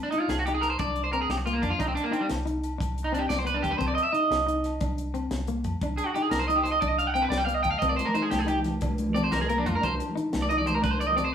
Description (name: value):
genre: highlife guitar band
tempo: 120 BPM (dotted quarters)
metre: 12/8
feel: straight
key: C minor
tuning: A4 = 440 Hz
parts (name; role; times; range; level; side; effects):
- semi-hollow electric guitar; accompaniment; 0.0-11.3 s; Bb3 to Eb4; -32 LUFS; left 3 dB; none
- electric guitar at the edge of break-up; arpeggios; 0.0-11.3 s; G3 to G5; -26 LUFS; right 2 dB; none
- tight funk drum kit; drums; 0.1-11.2 s; hi-hat, kick drum, snare drum; -35 LUFS; equal; none
- vintage muted fingered electric bass; bass; 0.3-11.3 s; C2 to F2; -32 LUFS; equal; none
- agogo bells; percussion; 0.3-11.3 s; none; -40 LUFS; left 3 dB; none
- congas; percussion; 7.8-11.2 s; none; -31 LUFS; equal; none
room: wet studio reverb, RT60 0.8 s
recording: band playing live in one room, studio reverb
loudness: -24 LUFS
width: side -8 dB against mid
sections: 0.0-11.3 A section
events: clean electric guitar solo 0.0-11.3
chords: 0.0 Cm; 0.8 Bb/C; 1.8 Cm; 2.8 Csus2; 3.8 Cm; 4.8 Bb/C; 5.8 Cm; 6.8 Cmadd9; 7.8 Cm; 8.8 Bb/C; 9.8 Cm; 10.8 Cmadd9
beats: 0.29 0.79 1.29 | 1.80 2.30 2.80 3.31 | 3.81 4.31 4.81 5.32 | 5.82 6.32 6.82 7.32 | 7.83 8.33 8.83 9.33 | 9.83 10.33 10.83 11.33